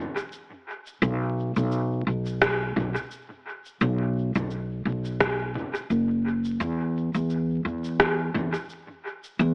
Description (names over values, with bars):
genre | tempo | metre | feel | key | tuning
ambient dub | 86 BPM | 4/4 | swing 56% on 16ths | unclear | A4 = 440 Hz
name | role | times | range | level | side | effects
organic electronic drum kit | drums | 0.2-9.5 s | rim click, shaker, toms | -26 LUFS | equal | overdrive, dub echo
upright bass | bass | 1.0-9.5 s | F#1 to E2 | -24 LUFS | equal | tube saturation
electronic kick drum | drums | 2.4-8.2 s | none | -28 LUFS | equal | overdrive
room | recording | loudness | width
light reverb | echo-heavy mix, vinyl crackle, AM radio sound | -24 LUFS | side -37 dB against mid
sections
0.0-9.5 A section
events
none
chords
none